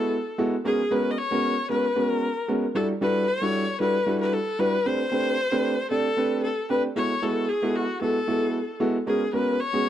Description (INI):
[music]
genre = funk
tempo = 114 BPM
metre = 4/4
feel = straight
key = unclear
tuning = A4 = 440 Hz
[part]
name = clear viola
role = melody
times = 0.0-9.9 s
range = F#4 to D#5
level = -26 LUFS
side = left 2 dB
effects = none
[part]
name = clear concert grand piano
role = accompaniment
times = 0.0-9.9 s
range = G3 to D5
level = -25 LUFS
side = right 1 dB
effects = none
[sound]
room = little or no reverb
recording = dry, close 1970s-style studio recording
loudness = -22 LUFS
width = side -11 dB against mid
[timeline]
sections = 0.0-9.9 A section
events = none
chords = 0.0 F#m11; 0.6 G#m11; 2.8 Em11; 4.9 Am11; 7.0 F#m11; 9.1 G#m11